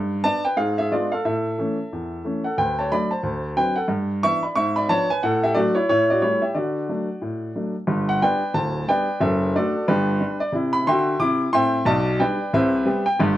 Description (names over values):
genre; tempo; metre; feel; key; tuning
jazz, stride piano; 181 BPM; 4/4; swing 61% on 8ths; D major, G major from 7.9 s; A4 = 445 Hz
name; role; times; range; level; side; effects
warm upright piano; solo; 0.0-13.4 s; D1 to D6; -19 LUFS; equal; none
room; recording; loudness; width
moderate studio reverb, RT60 0.8 s; none; -19 LUFS; side -14 dB against mid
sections
0.0-7.9 A section; 7.9-13.4 B section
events
none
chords
0.0 G; 0.6 G#dim7; 1.2 A; 2.6 D; 3.2 D7; 3.9 G6; 4.6 G#dim7; 5.2 D/A; 6.6 D; 7.9 G; 9.2 D/F#; 9.9 G; 10.5 C; 11.9 G/B; 12.5 Cmaj7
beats
0.24 0.57 0.91 | 1.24 1.57 1.90 2.24 | 2.57 2.90 3.23 3.57 | 3.90 4.23 4.57 4.90 | 5.23 5.56 5.90 6.23 | 6.56 6.89 7.22 7.56 | 7.89 8.22 8.55 8.88 | 9.21 9.54 9.88 10.21 | 10.54 10.87 11.20 11.53 | 11.86 12.19 12.52 12.85 | 13.18